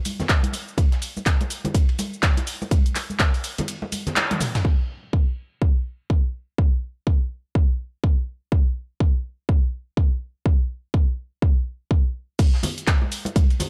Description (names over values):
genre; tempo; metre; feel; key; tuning
house; 124 BPM; 4/4; swing 60% on 16ths; none; none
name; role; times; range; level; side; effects
breakbeat sampler-style drum kit; drums; 0.1-4.6, 12.4-13.7 s; hi-hat, ride cymbal, snare drum; -39 LUFS; equal; sidechain pumping on cymbals, high-pass filter on cymbals, high-pass filter on snare, sidechain pumping on hats, high-pass filter on hats
punchy analog drum machine; drums; 0.1-4.8, 12.4-13.7 s; crash cymbal, handclaps, hi-hat, shaker, toms; -28 LUFS; equal; low-pass filter on hats, low-pass filter on perc, low-pass filter on snare, low-pass filter on toms, low-pass filter on cymbals
congas; percussion; 0.1-4.5, 12.4-13.7 s; none; -32 LUFS; equal; none
electronic kick drum; drums; 0.3-13.5 s; none; -21 LUFS; equal; none
room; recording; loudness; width
little or no reverb; dark, warm production; -23 LUFS; mono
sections
0.0-4.6 A section; 4.6-12.4 B section; 12.4-13.7 C section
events
break 3.7-4.6; band accent 4.2; drum fill 4.3-4.6; drop 12.4-13.7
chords
none